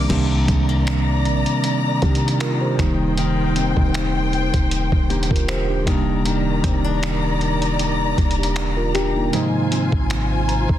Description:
contemporary R&B; 78 BPM; 4/4; swing 54% on 16ths; C minor; A4 = 442 Hz
mellow tine electric piano; accompaniment; 0.0-10.8 s; C3 to Bb5; -22 LUFS; right 3 dB; medium stereo tremolo
warm studio string section; sustained chords; 0.0-10.8 s; Eb3 to Bb5; -26 LUFS; left 3 dB; sidechain pumping
nylon-string guitar; arpeggios; 0.0-10.8 s; Ab2 to G4; -26 LUFS; left 7 dB; tape echo
clean 808-style bass; bass; 0.0-10.8 s; Eb1 to C3; -23 LUFS; equal
dusty soul sampler-style drum kit; drums; 0.1-10.8 s; crash cymbal, finger snaps, hi-hat, kick drum; -23 LUFS; equal; soft clipping on snare
light reverb; dense, heavily limited modern master; -17 LUFS; side -12 dB against mid
0.1-10.8 A section
tine electric piano fill 10.1-10.8
0.1 Cm9; 2.8 Eb6; 9.3 Ab6

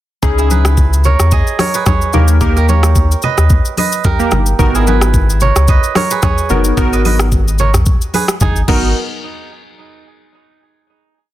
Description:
afrobeats; 110 BPM; 4/4; swing 55% on 16ths; G# minor; A4 = 440 Hz
glassy digital keys; accompaniment; 0.2-8.9 s; A#3 to A#4; -17 LUFS; equal; chorus
warm sub bass; bass; 0.2-8.9 s; F#1 to E2; -12 LUFS; equal
afro-pop drum kit; drums; 0.2-8.8 s; crash cymbal, hi-hat, kick drum, rim click, shaker, toms; -15 LUFS; equal; soft clipping on snare
congas; percussion; 0.2-8.9 s; -22 LUFS; left 3 dB
kora; riff; 0.4-8.9 s; D#4 to D#5; -18 LUFS; right 6 dB; tape echo
digital ambience; dense, heavily limited modern master; -10 LUFS; side -14 dB against mid
0.2-9.0 chorus; 9.0-11.1 final hit
0.2 C#madd9; 2.1 D#; 4.6 G#m7; 9.0 N.C.

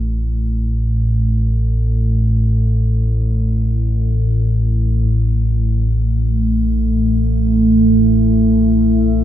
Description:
dark ambient drone; free time; A4 = 444 Hz
deep rumbling drone; drone; 0.0-9.2 s; A1 to A2; -15 LUFS; equal; built-in reverb, lush chorus
deep dark ambient pad; sustained chords; 5.6-9.2 s; A3 to E5; -15 LUFS; right 2 dB; chorus, built-in reverb
wet huge ambient reverb, RT60 9.0 s; -13 LUFS; side -11 dB against mid
0.0-5.1 A section; 5.1-9.2 B section
filter sweep on synth drone 0.0-5.1
0.0 N.C.; 5.1 Am

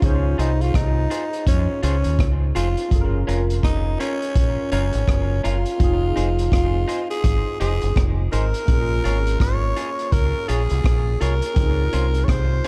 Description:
lovers rock reggae; 83 BPM; 4/4; swing 61% on 16ths; Bb minor; A4 = 441 Hz
growling tenor saxophone; melody; 0.0-12.7 s; Db4 to Db5; -28 LUFS; equal; tape echo
barky tine electric piano; accompaniment; 0.0-12.7 s; Bb3 to C5; -33 LUFS; equal; overdrive, ensemble chorus
deep dub fingered electric bass; bass; 0.0-12.6 s; F1 to F2; -24 LUFS; equal
crunchy breakbeat drum kit; drums; 0.0-12.7 s; hi-hat, kick drum, rim click; -25 LUFS; equal
electric guitar through a small old amp; stabs; 0.4-12.7 s; Db4 to Db5; -35 LUFS; equal; dub echo
light reverb; dark, warm production; -21 LUFS; mono
0.0-12.7 A section
0.0 Dbmaj7; 2.9 Gbmaj7; 5.8 Fm7; 8.7 Bbm7; 11.6 Dbmaj7

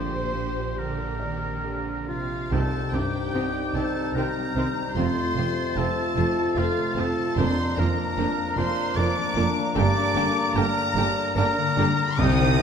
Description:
cinematic, emotional film score for orchestra; 74 BPM; 3/4; rubato; G minor; A4 = 435 Hz
rich studio violin section; melody; 0.0-12.6 s; G4 to Eb6; -33 LUFS; left 3 dB
rich studio violin section; second line; 0.0-12.6 s; C4 to C5; -36 LUFS; left 3 dB
warm oboe; second line; 0.0-12.6 s; F4 to Eb5; -30 LUFS; right 1 dB
dark concert grand piano; accompaniment; 0.0-12.6 s; Bb1 to D5; -29 LUFS; equal
rich studio viola section; accompaniment; 0.0-12.6 s; D3 to G4; -34 LUFS; right 3 dB
concert harp; arpeggios; 0.0-12.6 s; F2 to Bb5; -32 LUFS; left 8 dB
rich studio cello section; bass; 0.0-12.6 s; F2 to Eb3; -31 LUFS; right 3 dB
rich studio double bass section; bass; 0.0-12.6 s; F1 to C2; -30 LUFS; right 5 dB
dark clarinet; second line; 2.5-12.6 s; C4 to F4; -35 LUFS; equal
hollow flute section; second line; 2.5-12.6 s; Bb5 to A6; -34 LUFS; left 1 dB
mellow French horn section; sustained chords; 2.5-12.6 s; G3 to F4; -31 LUFS; left 2 dB
wet recital hall reverb, RT60 1.6 s; -22 LUFS; side -7 dB against mid
0.0-2.5 A section; 2.5-12.6 B section
0.0 Bb6; 2.5 Cm; 5.0 F; 7.4 Bb/F; 9.8 Gm

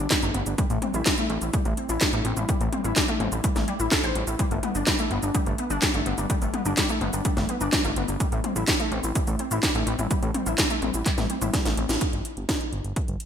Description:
italo disco; 126 BPM; 4/4; straight; A minor; A4 = 440 Hz
warbly dusty pluck; arpeggios; 0.0-12.0 s; G3 to C5; -29 LUFS; left 2 dB; ensemble chorus, cassette tape, digital delay
fat analog bass; bass; 0.0-13.2 s; G1 to A1; -30 LUFS; equal; tube saturation, digital delay
electronic kick drum; drums; 0.1-13.1 s; -27 LUFS; equal; overdrive
house drum kit; drums; 0.1-13.3 s; cabasa, handclaps, hi-hat, snare drum, toms; -26 LUFS; equal; overdrive, gated reverb
moderate plate reverb, RT60 1.7 s; bright 1980s-style digital production; -22 LUFS; side -8 dB against mid
0.0-12.0 A section; 12.0-13.3 B section
drum fill 11.5-12.0; band accent 11.9
0.0 Gsus2; 0.6 A5; 4.4 Gsus2; 8.2 A5; 12.0 N.C.

